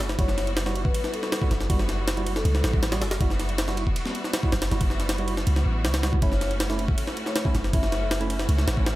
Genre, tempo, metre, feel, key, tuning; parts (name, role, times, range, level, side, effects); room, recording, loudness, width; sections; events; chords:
drum and bass, jungle; 159 BPM; 4/4; straight; A4 = 440 Hz
clear studio string section; sustained chords; 0.0-9.0 s; G3 to F#4; -34 LUFS; left 1 dB; vintage 12-bit sampler grit
warm 808-style bass; bass; 0.0-9.0 s; F#1 to C#2; -26 LUFS; equal; tube saturation
jungle sampler-style drum kit; drums; 0.0-9.0 s; kick drum, ride cymbal, snare drum; -25 LUFS; equal
vibraphone with soft mallets; melody; 0.2-2.7, 6.2-8.0 s; A4 to E5; -34 LUFS; left 3 dB; dub echo
barky tine electric piano; stabs; 0.2-8.4 s; G3 to F#4; -34 LUFS; right 3 dB; dub echo
light reverb; echo-heavy mix; -22 LUFS; side -16 dB against mid
0.0-9.0 A section
0.2 Emadd9/F#; 6.2 F#m7